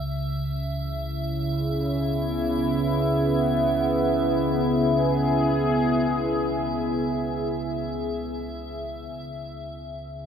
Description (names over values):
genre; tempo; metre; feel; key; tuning
dark ambient drone; free time; none; none; C# minor; A4 = 443 Hz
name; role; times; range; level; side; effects
sweeping resonant pad; sustained chords; 0.0-9.1 s; C#3 to G#4; -24 LUFS; equal; chorus
deep rumbling drone; drone; 0.0-10.3 s; C#2 to C#3; -31 LUFS; equal; built-in reverb, wide subtle chorus
icy glass pad; texture; 0.0-9.1 s; E5; -35 LUFS; equal; chorus, built-in reverb
room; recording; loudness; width
wet cathedral reverb, RT60 7.0 s; dreamy mix soaked in reverb; -22 LUFS; side -8 dB against mid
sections
0.0-9.1 A section; 9.1-10.3 B section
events
none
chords
0.0 C#m; 9.1 N.C.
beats
free time